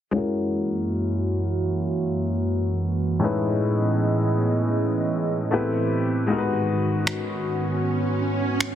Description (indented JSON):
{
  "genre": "contemporary R&B",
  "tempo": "78 BPM",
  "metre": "4/4",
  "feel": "swing 58% on 16ths",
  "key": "unclear",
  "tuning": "A4 = 440 Hz",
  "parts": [
    { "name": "warm grand piano", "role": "accompaniment", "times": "0.1-8.8 s", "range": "A2 to B4", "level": "-25 LUFS", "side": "left 3 dB", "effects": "low-pass filter" },
    { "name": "hollow soft pad", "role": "sustained chords", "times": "0.4-8.8 s", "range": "F#2 to D#5", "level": "-24 LUFS", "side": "right 1 dB", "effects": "chorus, low-pass filter" },
    { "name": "swell", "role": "sound effects", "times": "7.0-8.8 s", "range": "none", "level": "-29 LUFS", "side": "right 4 dB", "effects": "none" },
    { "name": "electronic finger snaps", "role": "drums", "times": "7.1-8.8 s", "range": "none", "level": "-27 LUFS", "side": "equal", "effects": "soft clipping on snare" }
  ],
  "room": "light reverb",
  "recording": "dense, heavily limited modern master",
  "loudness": "-21 LUFS",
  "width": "side -10 dB against mid",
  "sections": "0.1-8.8 A section",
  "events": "filter sweep 0.1-8.8; swell 7.0-8.8",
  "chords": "0.1 F#7; 3.2 Amaj9#11; 5.5 Am7; 6.3 G#m7"
}